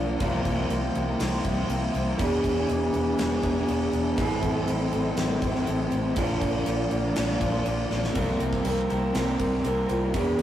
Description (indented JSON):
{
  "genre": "rock, shoegaze and dream pop",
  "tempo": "121 BPM",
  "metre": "4/4",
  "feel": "straight",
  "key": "C mixolydian",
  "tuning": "A4 = 437 Hz",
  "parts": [
    { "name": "dark analog pad", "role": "sustained chords", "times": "0.0-10.4 s", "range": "A4 to D6", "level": "-36 LUFS", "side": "left 1 dB", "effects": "chorus" },
    { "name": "picked twelve-string acoustic guitar", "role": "arpeggios", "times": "0.0-10.4 s", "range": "E3 to G#4", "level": "-35 LUFS", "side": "left 1 dB", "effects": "none" },
    { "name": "electric guitar through a small old amp", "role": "riff", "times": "0.0-10.4 s", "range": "A2 to B4", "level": "-27 LUFS", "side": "right 2 dB", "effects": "none" },
    { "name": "overdriven electric guitar", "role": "riff", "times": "0.0-10.4 s", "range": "A2 to Bb4", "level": "-31 LUFS", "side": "left 3 dB", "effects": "none" },
    { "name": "vintage muted fingered electric bass", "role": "bass", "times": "0.0-10.4 s", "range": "E1 to C2", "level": "-31 LUFS", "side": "equal", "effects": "none" },
    { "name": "gated 80s drum kit", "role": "drums", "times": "0.2-10.4 s", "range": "crash cymbal, kick drum, ride cymbal, snare drum", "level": "-32 LUFS", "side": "equal", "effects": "none" }
  ],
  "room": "wet stone room reverb, RT60 0.9 s",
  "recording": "rough rehearsal-room recording, warm saturation",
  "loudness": "-23 LUFS",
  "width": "side -11 dB against mid",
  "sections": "0.0-8.2 A section; 8.2-10.4 B section",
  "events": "drum fill 7.9",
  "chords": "0.2 C7sus4; 2.2 E7; 4.2 Am7; 6.2 Bb; 8.2 C7sus4"
}